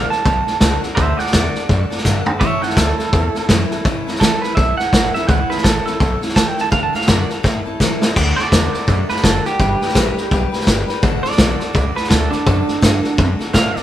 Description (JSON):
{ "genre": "rockabilly", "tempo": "167 BPM", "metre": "4/4", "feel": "swing 60% on 8ths", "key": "D major", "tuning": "A4 = 440 Hz", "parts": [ { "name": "electric guitar through a small old amp", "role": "melody", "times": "0.0-13.8 s", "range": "D4 to A5", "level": "-21 LUFS", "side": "right 3 dB", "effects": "analog delay" }, { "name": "picked steel-string acoustic guitar", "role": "accompaniment", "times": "0.0-13.8 s", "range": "A2 to B4", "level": "-23 LUFS", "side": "left 2 dB", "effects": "none" }, { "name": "upright bass", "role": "bass", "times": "0.0-13.8 s", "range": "F#1 to A2", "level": "-20 LUFS", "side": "equal", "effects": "none" }, { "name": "vintage drum kit", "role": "drums", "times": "0.1-13.8 s", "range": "crash cymbal, hi-hat, kick drum, snare drum, toms", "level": "-16 LUFS", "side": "equal", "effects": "none" } ], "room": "moderate stone room reverb, RT60 1.3 s", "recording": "band playing live in one room", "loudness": "-14 LUFS", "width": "side -12 dB against mid", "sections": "0.0-8.2 A section; 8.2-13.8 B section", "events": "drum fill 2.0-2.4, 7.4-8.2; clean electric guitar solo 8.2-13.8", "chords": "0.0 D; 2.4 A; 6.7 D; 7.4 A; 8.2 D; 9.6 G; 11.0 D", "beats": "0.25 0.61 | 0.97 1.33 1.69 2.05 | 2.41 2.77 3.13 3.49 | 3.85 4.21 4.57 4.92 | 5.28 5.64 6.00 6.36 | 6.72 7.08 7.44 7.80 | 8.16 8.52 8.88 9.23 | 9.59 9.95 10.31 10.67 | 11.03 11.39 11.75 12.11 | 12.46 12.82 13.18 13.54" }